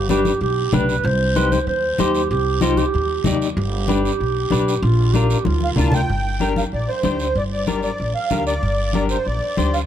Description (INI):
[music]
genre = latin, cumbia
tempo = 190 BPM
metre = 4/4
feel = straight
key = C harmonic minor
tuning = A4 = 436 Hz
[part]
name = breathy clarinet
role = second line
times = 0.0-6.1 s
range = E4 to C5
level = -22 LUFS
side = right 4 dB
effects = none
[part]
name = upright bass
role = bass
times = 0.0-9.8 s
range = G1 to Eb2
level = -22 LUFS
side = equal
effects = none
[part]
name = clean electric guitar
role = accompaniment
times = 0.1-9.8 s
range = D4 to D5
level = -24 LUFS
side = left 7 dB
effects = tremolo
[part]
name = congas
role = percussion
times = 0.1-9.7 s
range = none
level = -24 LUFS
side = left 1 dB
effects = none
[part]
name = guiro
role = percussion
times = 0.1-9.9 s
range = none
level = -33 LUFS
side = right 6 dB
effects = none
[part]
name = musette accordion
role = melody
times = 5.6-9.8 s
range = C5 to A5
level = -23 LUFS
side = right 2 dB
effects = tape echo
[sound]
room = light reverb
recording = dark, warm production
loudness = -17 LUFS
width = side -10 dB against mid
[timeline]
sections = 0.0-6.1 A section; 6.1-9.9 B section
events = drum fill 5.5-6.1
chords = 0.0 G; 1.0 Cm; 3.6 G; 4.8 Bb; 6.1 Gm